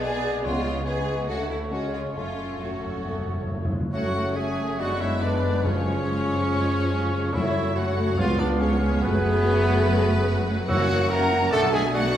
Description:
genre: classical, dramatic, fast romantic movement for symphony orchestra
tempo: 142 BPM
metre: 4/4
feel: rubato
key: F# minor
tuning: A4 = 442 Hz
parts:
  - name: clear symphonic violin section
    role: melody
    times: 0.0-12.2 s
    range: B4 to A#5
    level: -33 LUFS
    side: left 3 dB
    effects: none
  - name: clear clarinet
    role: second line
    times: 0.0-12.2 s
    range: G#3 to A#4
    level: -31 LUFS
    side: equal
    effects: none
  - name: mellow hollow silver concert flute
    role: second line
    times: 0.0-12.2 s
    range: G#4 to F#5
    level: -31 LUFS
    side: equal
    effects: none
  - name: rich symphonic violin section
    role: second line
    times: 0.0-12.2 s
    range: A3 to A4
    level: -36 LUFS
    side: left 2 dB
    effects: none
  - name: warm oboe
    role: second line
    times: 0.0-11.7 s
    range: B4 to F#5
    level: -36 LUFS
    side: right 3 dB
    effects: none
  - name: mellow bassoon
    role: accompaniment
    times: 0.0-11.7 s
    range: E#3 to B3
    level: -34 LUFS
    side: left 1 dB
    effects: none
  - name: rich symphonic viola section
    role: accompaniment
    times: 0.0-12.1 s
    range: D3 to A4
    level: -32 LUFS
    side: right 1 dB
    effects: none
  - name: rich symphonic double bass section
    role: bass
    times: 0.0-12.2 s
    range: F#1 to D2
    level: -30 LUFS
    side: right 1 dB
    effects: none
  - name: warm symphonic cello section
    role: bass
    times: 0.0-12.2 s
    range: C#2 to D3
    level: -30 LUFS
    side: right 1 dB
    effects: none
  - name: warm French horn section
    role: sustained chords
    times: 0.5-12.2 s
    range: G#3 to F#4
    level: -31 LUFS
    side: left 3 dB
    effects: none
  - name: timpani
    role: percussion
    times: 0.5-11.3 s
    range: F#2 to C#3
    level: -31 LUFS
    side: equal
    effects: none
  - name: clear trumpet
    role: stabs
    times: 3.9-12.2 s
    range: B3 to A#4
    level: -30 LUFS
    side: right 1 dB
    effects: none
room: wet recital hall reverb, RT60 1.4 s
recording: recorded in a church or concert hall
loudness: -21 LUFS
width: side -10 dB against mid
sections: 0.0-3.9 A section; 3.9-12.2 B section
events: timpani fill 2.2-3.9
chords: 0.4 C#7; 1.3 Dmaj7; 1.7 C#5; 2.2 F#m; 4.8 G#m7b5/F#; 5.6 C#/F#; 7.3 F#m; 8.2 C#7; 9.0 F#m; 10.7 F#7; 11.5 Bm7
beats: 0.03 | 0.45 0.87 1.29 1.72 | 2.17 2.62 3.06 3.50 | 3.94 4.37 4.80 5.22 | 5.65 6.07 6.50 6.92 | 7.34 7.76 8.18 8.60 | 9.02 9.44 9.85 10.27 | 10.68 11.10 11.52 11.94

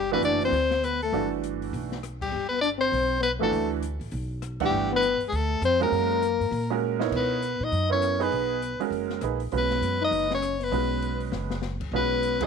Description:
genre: modal jazz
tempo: 200 BPM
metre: 4/4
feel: swing 61% on 8ths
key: B major from 7.1 s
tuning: A4 = 440 Hz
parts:
  - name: bright soprano saxophone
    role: melody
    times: 0.0-12.5 s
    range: G4 to D#5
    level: -26 LUFS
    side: left 2 dB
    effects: none
  - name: breathy trombone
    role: second line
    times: 0.0-12.5 s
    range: G3 to D#4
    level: -30 LUFS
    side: left 13 dB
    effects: none
  - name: upright bass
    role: bass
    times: 0.0-12.5 s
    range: F#1 to B2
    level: -31 LUFS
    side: right 1 dB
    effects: none
  - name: clear upright piano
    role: accompaniment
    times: 0.1-12.5 s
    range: E3 to F#5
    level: -28 LUFS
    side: right 15 dB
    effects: none
  - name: open jazz drum kit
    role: drums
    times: 0.2-12.5 s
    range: crash cymbal, hi-hat, kick drum, ride cymbal, rim click, snare drum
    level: -40 LUFS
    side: left 7 dB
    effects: none
room: light reverb, small room ambience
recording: 1960s-style stereo with parts hard left and right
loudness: -24 LUFS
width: side -6 dB against mid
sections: 0.0-7.1 A section; 7.1-12.5 B section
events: band accent 2.2, 4.6; drum fill 6.8, 11.3-11.6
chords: 0.0 Gmaj9; 5.9 F#; 7.1 Bmaj9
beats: 0.23 0.53 0.83 | 1.13 1.43 1.73 2.03 | 2.33 2.63 2.93 3.23 | 3.53 3.83 4.12 4.42 | 4.72 5.02 5.32 5.62 | 5.92 6.22 6.52 6.82 | 7.12 7.42 7.72 8.02 | 8.32 8.62 8.92 9.22 | 9.52 9.82 10.12 10.42 | 10.72 11.02 11.32 11.62 | 11.93 12.23

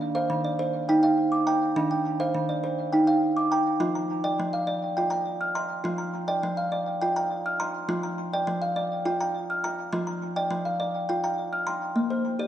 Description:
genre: world meditative, meditative tuned percussion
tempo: 206 BPM (eighths)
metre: 7/8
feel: straight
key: unclear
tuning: A4 = 441 Hz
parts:
  - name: kalimba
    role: solo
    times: 0.0-12.5 s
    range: Eb3 to F6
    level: -24 LUFS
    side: right 1 dB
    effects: tape echo
room: wet concert hall reverb, RT60 2.0 s, small room ambience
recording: dark, warm production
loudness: -24 LUFS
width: side -11 dB against mid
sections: 0.0-12.0 A section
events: none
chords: 0.0 Eb; 3.8 F5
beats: 0.01 0.30 0.59 0.89 1.18 1.47 | 1.76 2.06 2.35 2.64 2.93 3.22 3.52 | 3.81 4.10 4.39 4.68 4.97 5.27 5.56 | 5.85 6.14 6.43 6.73 7.02 7.31 7.60 | 7.89 8.18 8.47 8.77 9.06 9.35 9.64 | 9.93 10.22 10.51 10.80 11.10 11.39 11.68 | 11.97 12.26

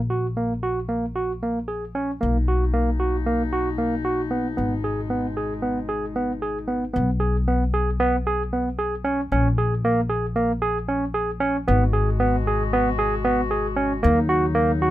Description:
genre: contemporary instrumental, chamber music in an uneven meter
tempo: 228 BPM (eighths)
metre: 9/8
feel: straight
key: G# minor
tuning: A4 = 440 Hz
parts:
  - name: upright bass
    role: bass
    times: 0.0-14.9 s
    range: G#1 to D#2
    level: -25 LUFS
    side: left 1 dB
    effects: none
  - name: barky tine electric piano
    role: arpeggios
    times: 0.1-14.9 s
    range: A#3 to G#4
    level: -22 LUFS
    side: right 1 dB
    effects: none
  - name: mellow woodwind section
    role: sustained chords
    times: 2.2-6.9, 11.7-14.9 s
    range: B2 to F#4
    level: -29 LUFS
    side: left 4 dB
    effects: none
room: little or no reverb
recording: close, detailed microphones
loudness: -20 LUFS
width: side -14 dB against mid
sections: 0.0-7.0 A section; 7.0-14.9 B section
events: none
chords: 0.0 F#/A#; 2.2 Bmaj7; 4.6 G#m; 7.0 G#m/B; 9.3 A#m7; 11.7 G#m7; 14.0 D#m7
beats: 0.12 0.38 0.65 0.91 1.17 1.43 1.70 1.96 | 2.22 2.49 2.75 3.01 3.27 3.54 3.80 4.07 4.33 | 4.59 4.85 5.12 5.38 5.64 5.91 6.17 6.43 6.70 | 6.96 7.22 7.48 7.75 8.01 8.27 8.53 8.79 9.06 | 9.32 9.58 9.84 10.11 10.37 10.63 10.89 11.15 11.42 | 11.68 11.94 12.21 12.47 12.73 12.99 13.25 13.52 13.78 | 14.04 14.30 14.57 14.83

